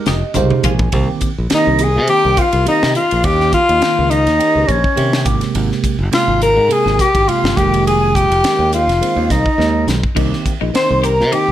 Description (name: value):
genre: electric jazz fusion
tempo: 104 BPM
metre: 4/4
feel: swing 54% on 16ths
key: unclear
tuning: A4 = 439 Hz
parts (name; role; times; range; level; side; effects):
- bell-like tine electric piano; accompaniment; 0.0-11.5 s; C3 to Ab5; -21 LUFS; right 6 dB; phaser
- clean electric guitar; stabs; 0.0-0.9, 10.2-11.5 s; Eb4 to G4; -24 LUFS; left 8 dB; wide subtle chorus
- modern bright fingered electric bass; bass; 0.1-11.5 s; F1 to C3; -18 LUFS; equal; none
- crisp fusion drum kit; drums; 0.1-11.5 s; crash cymbal, hi-hat, kick drum, ride cymbal, snare drum, toms; -20 LUFS; equal; none
- congas; percussion; 0.1-0.9 s; none; -24 LUFS; left 4 dB; none
- breathy alto saxophone; melody; 1.5-11.5 s; Db4 to C5; -14 LUFS; left 2 dB; slapback echo
- breathy jazz flute; second line; 1.6-11.5 s; Db5 to C6; -21 LUFS; right 4 dB; none
room: light reverb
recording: none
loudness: -12 LUFS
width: side -12 dB against mid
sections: 0.9-11.5 A section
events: drum fill 0.0-0.9, 9.6-10.2; tine electric piano fill 0.0-0.9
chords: 0.0 Fm11; 0.9 Cm7; 3.2 Eb7; 5.3 Abmaj9; 7.6 Fm11; 10.2 Cm7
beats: 0.35 | 0.93 1.51 2.08 2.66 | 3.24 3.82 4.39 4.97 | 5.55 6.13 6.70 7.28 | 7.86 8.44 9.01 9.59 | 10.17 10.74 11.32